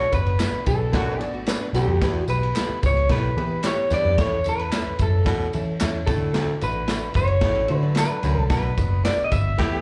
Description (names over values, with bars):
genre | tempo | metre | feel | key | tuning
uptempo 1960s-style soul | 111 BPM | 4/4 | straight | unclear | A4 = 440 Hz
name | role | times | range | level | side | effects
electric guitar through a small old amp | melody | 0.0-9.8 s | G4 to E5 | -27 LUFS | equal | none
clear upright piano | accompaniment | 0.0-9.8 s | B2 to D5 | -35 LUFS | equal | none
bright baritone saxophone | riff | 0.0-9.8 s | D2 to B2 | -34 LUFS | equal | none
vintage muted picked electric bass | bass | 0.0-9.8 s | F#1 to E3 | -26 LUFS | equal | none
raw garage drum kit | drums | 0.1-9.7 s | kick drum, ride cymbal, snare drum | -28 LUFS | equal | none
tambourine and handclaps | percussion | 0.1-9.4 s | none | -38 LUFS | equal | slapback echo
mellow horn section | second line | 0.9-1.3, 9.6-9.8 s | B3 to G4 | -32 LUFS | equal | slapback echo
archtop guitar, miked and amplified | riff | 1.3-2.1, 7.5-8.5 s | F#3 to B4 | -37 LUFS | equal | none
room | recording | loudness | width
light reverb | live gig heard through the venue's PA, cassette tape, club reverb | -22 LUFS | mono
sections
0.0-9.8 A section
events
band accent 0.0-2.0, 8.5-9.8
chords
0.0 Bm; 2.0 Em; 4.2 A/E; 6.1 D; 8.5 Bm